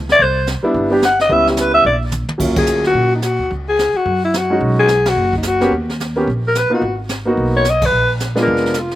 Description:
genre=jazz, small-group swing and bop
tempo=217 BPM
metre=4/4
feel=swing 61% on 8ths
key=Eb minor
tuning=A4 = 440 Hz
part: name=upright bass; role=bass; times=0.0-9.0 s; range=F1 to Bb2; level=-21 LUFS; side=right 1 dB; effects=none
part: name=growling alto saxophone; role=melody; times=0.1-9.0 s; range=Eb4 to F#5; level=-14 LUFS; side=left 1 dB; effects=slapback echo
part: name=jazz brush drum kit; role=drums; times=0.1-9.0 s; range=brushed snare drum, crash cymbal, hi-hat, kick drum, ride cymbal, snare drum, toms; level=-24 LUFS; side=right 1 dB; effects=none
part: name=warm concert grand piano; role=accompaniment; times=0.6-8.7 s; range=Gb3 to G4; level=-17 LUFS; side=right 1 dB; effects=slapback echo
room=little or no reverb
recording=recorded outdoors, with no room sound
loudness=-13 LUFS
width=side -14 dB against mid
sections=0.0-2.4 A section; 2.4-9.0 B section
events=drum fill 2.1; band accent 2.5, 5.0, 7.8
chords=0.2 Cmaj9; 1.3 C#m7b5; 1.8 N.C.; 2.4 Ebm9; 3.5 Db5; 4.1 Gb5; 4.6 B6; 5.7 Eb5; 6.8 Abm9; 7.9 Bb7b9

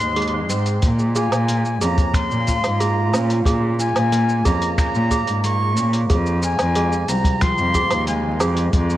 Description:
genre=folktronica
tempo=91 BPM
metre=4/4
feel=straight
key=unclear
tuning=A4 = 436 Hz
part: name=jazz flute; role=melody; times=0.0-8.5 s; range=Ab5 to Db6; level=-24 LUFS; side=left 2 dB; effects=analog delay
part: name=fingerpicked plugged-in swing-style acoustic guitar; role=arpeggios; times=0.0-9.0 s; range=Ab2 to F4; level=-26 LUFS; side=right 1 dB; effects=lush chorus, analog delay
part: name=dark cello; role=bass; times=0.0-9.0 s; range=C2 to Bb2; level=-20 LUFS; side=equal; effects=none
part: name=lo-fi sampler-style drum kit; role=drums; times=0.0-9.0 s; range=cabasa, finger snaps, hi-hat, woodblock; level=-27 LUFS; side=right 1 dB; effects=none
part: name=toy piano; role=second line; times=0.2-8.6 s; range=Ab4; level=-28 LUFS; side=right 3 dB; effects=analog delay
part: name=kick drum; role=drums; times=0.8-8.9 s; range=none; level=-20 LUFS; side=equal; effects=none
room=moderate plate reverb, RT60 2.6 s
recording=dreamy mix soaked in reverb, vinyl crackle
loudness=-17 LUFS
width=side -14 dB against mid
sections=0.0-9.0 A section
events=none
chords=0.0 Ab; 0.8 Bbm; 6.1 Fm

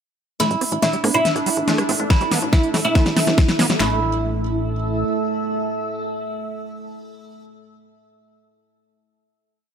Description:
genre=psychedelic trance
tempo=141 BPM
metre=4/4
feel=straight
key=unclear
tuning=A4 = 435 Hz
part: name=oud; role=melody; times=0.4-7.4 s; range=E4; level=-22 LUFS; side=right 2 dB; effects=phaser, sidechain pumping, digital delay
part: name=pulsing gated texture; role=sustained chords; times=0.4-3.8 s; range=D4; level=-28 LUFS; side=right 2 dB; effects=chorus, built-in reverb, sidechain pumping
part: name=overdriven acid bass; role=riff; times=0.4-4.0 s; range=G3 to C4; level=-26 LUFS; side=equal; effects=distortion, auto-pan, sidechain pumping, ping-pong delay
part: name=big-room dance drum kit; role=drums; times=0.4-3.8 s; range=hi-hat, rim click, snare drum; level=-22 LUFS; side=left 1 dB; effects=none
part: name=deep dark ambient pad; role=texture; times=1.6-7.6 s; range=A3 to E6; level=-27 LUFS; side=right 2 dB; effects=chorus, built-in reverb, sidechain pumping
part: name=tight sequencer bass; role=bass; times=0.5-5.0 s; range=G1 to A2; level=-25 LUFS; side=left 1 dB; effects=high-pass filter
part: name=garage drum kit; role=drums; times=2.1-3.9 s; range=handclaps, kick drum, snare drum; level=-16 LUFS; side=left 1 dB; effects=overdrive
room=light reverb, digital ambience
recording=none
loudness=-17 LUFS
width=side -7 dB against mid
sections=0.4-3.8 build; 3.8-7.2 final chord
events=build-up 0.4-3.8; drum fill 0.4-3.8; filter sweep on acid bass 0.4-3.8; filter sweep on synth texture 0.4-3.8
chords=0.4 A5

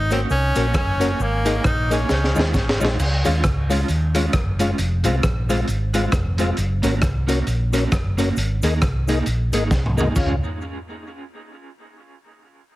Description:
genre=ska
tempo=134 BPM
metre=4/4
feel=swing 58% on 8ths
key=Db major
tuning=A4 = 440 Hz
part: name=bright tenor saxophone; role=melody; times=0.0-2.5 s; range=Bb3 to Eb4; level=-26 LUFS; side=equal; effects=dub echo
part: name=hollow-body short-scale fingered electric bass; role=bass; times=0.0-10.4 s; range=F1 to Eb2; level=-21 LUFS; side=equal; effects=none
part: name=electric guitar at the edge of break-up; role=accompaniment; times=0.1-10.3 s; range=Ab3 to Ab4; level=-26 LUFS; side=right 2 dB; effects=tremolo, dub echo
part: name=mellow tonewheel organ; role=stabs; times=0.1-10.4 s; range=Db4 to F5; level=-27 LUFS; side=left 4 dB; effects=chorus vibrato
part: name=crunchy breakbeat drum kit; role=drums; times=0.1-10.3 s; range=crash cymbal, hi-hat, kick drum, rim click, snare drum, toms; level=-23 LUFS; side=equal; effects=none
part: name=cabasa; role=percussion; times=0.1-10.4 s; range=none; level=-40 LUFS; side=right 6 dB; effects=none
room=studio ambience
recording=heavily compressed radio sound, multiband compression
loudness=-18 LUFS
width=side -17 dB against mid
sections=0.0-3.0 A section; 3.0-10.2 B section; 10.2-12.0 C section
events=drum fill 2.1-3.0, 9.7-10.2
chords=0.0 Gb; 1.2 Absus2; 2.1 Dbadd9; 3.0 Db; 4.8 Fm; 6.6 Gb; 8.4 Absus2; 10.2 Db

